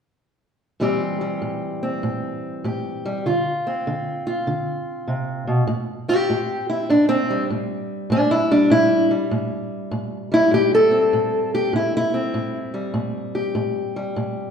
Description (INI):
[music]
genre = acoustic country blues, solo or duo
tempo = 99 BPM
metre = 4/4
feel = swing 65% on 8ths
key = A minor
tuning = A4 = 440 Hz
[part]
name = fingerpicked steel-string acoustic guitar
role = solo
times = 0.8-14.5 s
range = A2 to A4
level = -19 LUFS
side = equal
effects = none
[sound]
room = wet recital hall reverb, RT60 1.4 s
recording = recorded in a church or concert hall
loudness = -19 LUFS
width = side -7 dB against mid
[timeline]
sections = 0.8-5.7 A section; 5.7-14.5 B section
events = steel-string acoustic guitar solo 5.7-14.5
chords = 0.8 Am7; 3.3 Dm7; 5.7 Am7